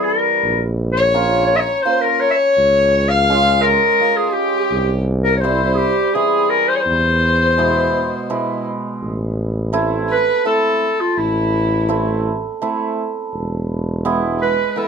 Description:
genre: klezmer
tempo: 84 BPM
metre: 3/4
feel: straight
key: A harmonic minor from 9.0 s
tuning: A4 = 440 Hz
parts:
  - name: warm clarinet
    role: melody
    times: 0.0-14.9 s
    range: E4 to F5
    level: -16 LUFS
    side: left 2 dB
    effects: none
  - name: hammered dulcimer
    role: accompaniment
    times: 0.0-14.9 s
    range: B2 to F4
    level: -22 LUFS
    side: right 4 dB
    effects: none
  - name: breathy tuba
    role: bass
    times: 0.4-14.6 s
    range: E1 to E2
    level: -20 LUFS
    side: right 1 dB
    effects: none
  - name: dark violin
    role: second line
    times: 1.0-14.9 s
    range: E4 to F5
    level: -24 LUFS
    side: left 2 dB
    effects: none
room: light reverb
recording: close, detailed microphones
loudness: -14 LUFS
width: side -6 dB against mid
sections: 0.0-9.0 A section; 9.0-14.9 B section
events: none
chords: 0.4 Bbm; 2.6 Db; 4.7 C; 6.9 E; 9.0 Am; 13.3 E

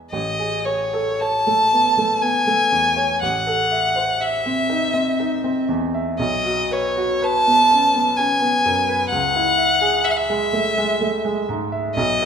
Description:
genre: classical, romantic duo for violin and grand piano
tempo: 54-65 BPM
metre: 3/4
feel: rubato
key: unclear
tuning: A4 = 439 Hz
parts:
  - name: bright baby grand piano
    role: accompaniment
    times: 0.0-12.3 s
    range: A1 to E5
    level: -22 LUFS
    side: right 2 dB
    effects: none
  - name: rich violin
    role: melody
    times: 0.1-12.3 s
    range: C#5 to A5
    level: -18 LUFS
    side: left 1 dB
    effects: none
room: moderate recital hall reverb, RT60 1.3 s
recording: minimal, uncompressed stereo recording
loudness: -17 LUFS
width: side -7 dB against mid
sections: 0.1-12.3 A section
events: none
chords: 0.1 Amaj7; 3.2 Am; 6.2 B5; 9.1 C#m

